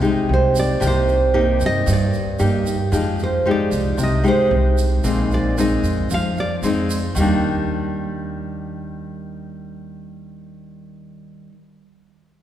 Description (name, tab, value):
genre	bossa nova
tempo	114 BPM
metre	4/4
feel	straight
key	Eb major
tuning	A4 = 439 Hz
part	nylon-string guitar	accompaniment	0.0-11.6 s	G2 to G4	-21 LUFS	left 1 dB	none
part	tube shaker	percussion	0.0-7.3 s	none	-35 LUFS	right 6 dB	none
part	nylon-string guitar	melody	0.3-6.5 s	C5 to F5	-22 LUFS	right 3 dB	none
part	upright bass	bass	0.3-11.5 s	Bb1 to G2	-21 LUFS	right 1 dB	none
room	wet church reverb, RT60 2.8 s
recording	recorded in a church or concert hall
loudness	-16 LUFS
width	side -11 dB against mid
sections	0.0-7.2 A section; 7.2-11.4 B section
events	nylon-string guitar solo 0.0-7.2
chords	0.0 Fm9 (rootless); 0.8 Cm7; 2.9 Fm9; 5.0 Bb9sus4; 7.2 Ebmaj7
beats	0.30 | 0.82 1.35 1.88 2.41 | 2.94 3.46 3.99 4.52 | 5.05 5.58 6.11 6.63 | 7.16 7.69 8.22 8.74 | 9.27 9.80 10.33 10.86